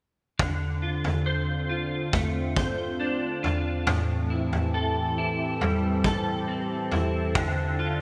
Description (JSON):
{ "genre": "dream pop", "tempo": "69 BPM", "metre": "4/4", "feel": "straight", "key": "D minor", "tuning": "A4 = 438 Hz", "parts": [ { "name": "phased analog pad", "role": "sustained chords", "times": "0.8-8.0 s", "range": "D3 to A4", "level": "-34 LUFS", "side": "equal", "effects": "phaser, chorus" }, { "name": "clean electric guitar", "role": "arpeggios", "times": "0.4-8.0 s", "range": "A2 to C5", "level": "-31 LUFS", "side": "equal", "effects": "ensemble chorus, digital delay" }, { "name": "raw garage drum kit", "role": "drums", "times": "0.4-7.6 s", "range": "kick drum, toms", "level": "-30 LUFS", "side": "equal", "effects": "none" } ], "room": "wet lush hall reverb, RT60 2.9 s", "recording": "bright 1980s-style digital production", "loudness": "-27 LUFS", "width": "mono", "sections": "0.4-8.0 A section", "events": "none", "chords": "0.4 Dm7; 3.9 Am7; 7.4 Dm7", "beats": "| 0.40 1.27 2.14 3.01 | 3.88 4.75 5.62 6.48 | 7.35" }